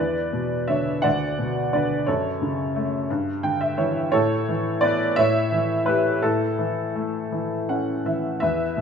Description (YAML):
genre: classical, lyrical solo piano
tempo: 53-59 BPM (dotted quarters)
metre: 6/8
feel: rubato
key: unclear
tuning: A4 = 440 Hz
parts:
  - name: clear upright piano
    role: solo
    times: 0.0-8.8 s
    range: D2 to G5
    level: -21 LUFS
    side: equal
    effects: none
room: moderate scoring stage reverb, RT60 1.9 s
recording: minimal, uncompressed stereo recording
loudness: -21 LUFS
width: side -6 dB against mid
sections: 0.0-8.8 A section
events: upright piano fill 3.1-4.1, 7.3-8.4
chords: 0.0 E5; 1.0 Bm/D; 2.1 F#m; 3.1 Em7/G; 4.1 Asus2; 5.2 A9; 6.2 A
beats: 1.04 | 2.08 3.09 | 4.12 5.17 | 6.22 7.32 | 8.42